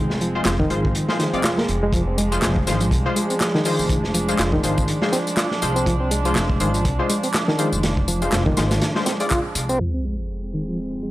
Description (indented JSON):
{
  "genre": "breakbeat, breaks",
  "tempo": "122 BPM",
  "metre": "4/4",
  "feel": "swing 57% on 16ths",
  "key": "F dorian",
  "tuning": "A4 = 436 Hz",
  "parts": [
    { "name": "dark chamber string section", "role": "sustained chords", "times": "0.0-11.1 s", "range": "F2 to D4", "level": "-26 LUFS", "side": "right 1 dB", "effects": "vintage 12-bit sampler grit, sidechain pumping, low-pass filter" },
    { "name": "barky reed electric piano", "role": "riff", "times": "0.0-11.1 s", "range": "Eb3 to F4", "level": "-24 LUFS", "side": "equal", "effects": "overdrive, medium tremolo, tube saturation, vintage 12-bit sampler grit, low-pass filter, analog delay" },
    { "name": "orchestra-hit-like synth stab", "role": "stabs", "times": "0.0-9.3 s", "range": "Ab3 to D5", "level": "-26 LUFS", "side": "left 2 dB", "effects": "built-in reverb, cassette tape, analog delay" },
    { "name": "upright bass", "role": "bass", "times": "0.0-9.8 s", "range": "F1 to C2", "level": "-24 LUFS", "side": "equal", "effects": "tube saturation" },
    { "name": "crunchy breakbeat drum kit", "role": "drums", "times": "0.1-9.7 s", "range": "hi-hat, kick drum, snare drum", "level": "-24 LUFS", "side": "equal", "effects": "none" },
    { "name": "electronic handclaps and tambourine", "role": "drums", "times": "0.5-11.1 s", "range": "none", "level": "-28 LUFS", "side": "left 1 dB", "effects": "none" },
    { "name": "sub drop", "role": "sound effects", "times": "9.8-11.1 s", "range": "none", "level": "-28 LUFS", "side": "equal", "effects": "none" }
  ],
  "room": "small room ambience",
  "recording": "dry, gritty hardware recording, transformer saturation, low-pass filter",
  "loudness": "-18 LUFS",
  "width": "side -16 dB against mid",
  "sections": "0.0-9.8 A section; 9.8-11.1 B section",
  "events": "band accent 9.3; impact 9.8-11.1; filter sweep on reed electric piano 9.8-11.1; filter sweep on string section 9.8-11.1; filter sweep 9.8-11.1",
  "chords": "0.0 Fm"
}